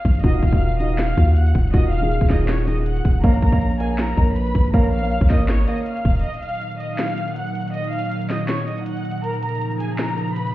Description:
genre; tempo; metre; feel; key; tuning
hip hop, trap; 160 BPM; 4/4; half-time; Eb minor; A4 = 439 Hz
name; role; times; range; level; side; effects
warm studio violin section; melody; 0.0-10.5 s; Ab4 to Gb6; -28 LUFS; equal; tape echo
long sustained 808-style bass; bass; 0.1-6.2 s; Eb1 to Eb2; -20 LUFS; equal; none
trap drum kit; drums; 0.1-10.5 s; handclaps, hi-hat, kick drum, snare drum; -19 LUFS; equal; overdrive
dark grand piano; accompaniment; 0.2-6.3 s; Eb3 to F5; -23 LUFS; right 1 dB; none
airy breathy pad; sustained chords; 6.3-10.5 s; Bb2 to Eb4; -25 LUFS; equal; chorus
room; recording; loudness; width
digital ambience; heard muffled through a wall, stone room reverb, EQ; -17 LUFS; side -15 dB against mid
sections
0.0-10.5 A section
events
break 0.0, 6.2-10.5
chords
0.2 Ebmadd9; 3.2 Bbm; 6.2 Ebmadd9; 9.2 Bbm

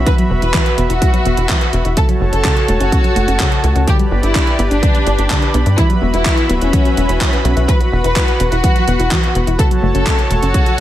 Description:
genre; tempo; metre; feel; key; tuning
italo disco; 126 BPM; 4/4; straight; E dorian; A4 = 440 Hz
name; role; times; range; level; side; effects
warm analog pad; sustained chords; 0.0-10.8 s; F#4 to B5; -21 LUFS; equal; chorus
analog pluck; arpeggios; 0.0-10.8 s; C#3 to B4; -22 LUFS; left 1 dB; chorus, phaser, digital delay
tight sequencer bass; bass; 0.0-10.5 s; D1 to G2; -16 LUFS; equal; none
warm symphonic violin section; melody; 0.1-10.8 s; C#4 to B4; -20 LUFS; left 1 dB; tape echo
electronic kick drum; drums; 0.1-10.6 s; none; -15 LUFS; equal; overdrive
gated 80s digital drum machine; drums; 0.1-10.8 s; handclaps, hi-hat; -22 LUFS; right 1 dB; gated reverb, overdrive
room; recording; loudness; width
digital ambience; none; -12 LUFS; side -13 dB against mid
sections
0.0-10.8 A section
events
none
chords
0.0 Esus2; 2.0 F#m; 3.9 G; 5.8 Esus2; 9.6 F#m

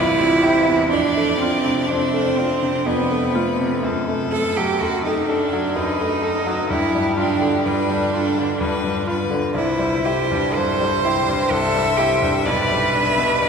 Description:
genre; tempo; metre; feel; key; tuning
classical, slow romantic movement for piano trio; 63 BPM; 3/4; rubato; C major; A4 = 439 Hz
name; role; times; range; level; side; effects
clear violin; melody; 0.0-13.5 s; G4 to E5; -25 LUFS; left 5 dB; none
rich cello; second line; 0.0-13.5 s; A3 to C5; -20 LUFS; right 3 dB; none
bright grand piano; accompaniment; 0.0-13.5 s; A1 to A4; -22 LUFS; left 1 dB; none
room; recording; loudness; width
wet cathedral reverb, RT60 6.0 s; recorded in a church or concert hall; -17 LUFS; side -6 dB against mid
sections
0.0-13.5 A section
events
none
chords
0.0 Am7; 0.9 F; 3.8 F#m6; 6.7 G5; 9.5 C; 12.5 G/B

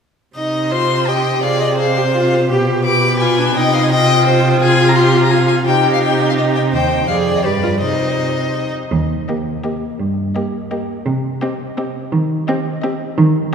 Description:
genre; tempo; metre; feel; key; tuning
quick classical-period movement for string quartet; 169 BPM; 3/4; straight; C minor, Eb major from 8.9 s; A4 = 442 Hz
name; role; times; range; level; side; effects
clear violin; second line; 0.4-13.1 s; F4 to Eb5; -21 LUFS; equal; none
rich viola; accompaniment; 0.4-13.1 s; Bb3 to Ab4; -19 LUFS; right 1 dB; none
rich cello; bass; 0.4-13.5 s; Eb2 to Eb3; -18 LUFS; right 1 dB; none
rich violin; melody; 0.7-13.1 s; C5 to D6; -20 LUFS; left 4 dB; none
room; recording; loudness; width
wet church reverb, RT60 3.3 s; recorded in a church or concert hall; -13 LUFS; side -6 dB against mid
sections
0.4-8.9 A section; 8.9-13.5 B section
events
none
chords
0.4 Cm; 1.4 Fm/C; 2.5 G7/B; 3.6 Cm; 4.6 Fm/C; 5.7 Cm; 6.7 Cm/Eb; 7.1 Ddim/F; 7.4 G7; 7.8 Cm; 8.9 Eb; 10.0 Eb/G; 11.1 Cm; 12.1 Cm/Eb

